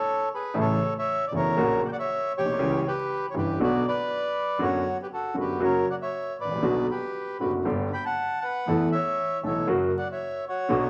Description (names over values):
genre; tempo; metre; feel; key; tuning
tango; 118 BPM; 4/4; rubato; B minor; A4 = 438 Hz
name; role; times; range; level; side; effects
bandoneon; melody; 0.0-10.9 s; F#4 to B5; -30 LUFS; equal; none
clear concert grand piano; accompaniment; 0.5-10.9 s; E1 to A4; -29 LUFS; equal; none
clear double bass; bass; 0.5-10.9 s; E1 to E2; -39 LUFS; equal; none
room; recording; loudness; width
moderate large studio reverb, RT60 1.4 s; vinyl crackle; -27 LUFS; mono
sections
0.0-10.9 A section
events
none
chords
0.0 E (rootless); 0.6 A; 1.6 F#/A#; 2.6 C#dim; 3.6 Bm; 4.6 Bm/F#; 5.6 F#; 6.6 Bm; 7.7 G; 8.7 Esus4; 9.7 F#